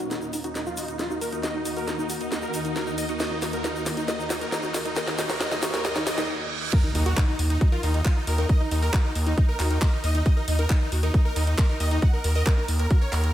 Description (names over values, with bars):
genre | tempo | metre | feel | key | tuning
uplifting trance | 136 BPM | 4/4 | straight | Eb minor | A4 = 440 Hz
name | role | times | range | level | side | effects
supersaw chords | melody | 0.0-13.3 s | Eb4 to Gb5 | -31 LUFS | right 1 dB | wide subtle chorus, sidechain pumping, low-pass filter, diffuse ambient delay
plucky unison lead | second line | 0.0-13.3 s | Eb4 to Gb5 | -34 LUFS | equal | sidechain pumping, diffuse ambient delay
shimmering ambient pad | sustained chords | 0.0-6.2 s | Eb2 to Gb4 | -34 LUFS | equal | chorus, built-in reverb, sidechain pumping
wide unison pluck | arpeggios | 0.0-13.2 s | Eb4 to Gb5 | -35 LUFS | left 1 dB | lush chorus, sidechain pumping, diffuse ambient delay
house drum kit | drums | 0.0-13.3 s | crash cymbal, handclaps, hi-hat, snare drum | -31 LUFS | equal | none
egg shaker | percussion | 0.0-6.3 s | none | -39 LUFS | left 2 dB | none
riser, reverse cymbal and impact | sound effects | 1.7-8.5 s | none | -36 LUFS | right 2 dB | none
electronic kick drum | drums | 6.7-13.0 s | none | -20 LUFS | equal | none
gritty driven synth bass | bass | 7.0-13.3 s | Eb2 | -23 LUFS | equal | sidechain pumping
room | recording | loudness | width
moderate plate reverb, RT60 1.7 s, digital ambience | dreamy mix soaked in reverb | -22 LUFS | side -12 dB against mid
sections
0.0-6.7 A section; 6.7-13.3 B section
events
build-up 0.0-6.7; drum fill 0.0-6.3; filter sweep on supersaw synth 0.0-6.7; filter sweep on synth pluck 0.0-6.7; filter sweep on digital synth lead 0.0-6.7; reverse cymbal 5.8-6.7; stop 6.3-6.7; drop 6.7-13.3; impact 6.7-8.5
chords
0.0 Ebm